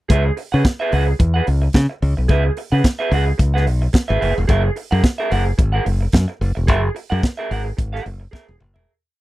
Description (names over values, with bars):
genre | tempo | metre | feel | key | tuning
disco | 109 BPM | 4/4 | swing 56% on 16ths | C# dorian | A4 = 440 Hz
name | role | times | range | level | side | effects
electric guitar through a small old amp | accompaniment | 0.1-8.9 s | G#4 to F#5 | -22 LUFS | right 3 dB | none
modern bright fingered electric bass | bass | 0.1-8.8 s | E1 to C#3 | -17 LUFS | equal | none
tight funk drum kit | drums | 0.1-8.9 s | hi-hat, kick drum, snare drum, toms | -15 LUFS | equal | none
room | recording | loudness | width
little or no reverb | dry, close 1970s-style studio recording | -16 LUFS | side -17 dB against mid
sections
0.1-8.9 groove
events
fade-out 6.7-8.9; drum fill 8.3-8.9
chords
0.1 C#m7; 4.5 F#9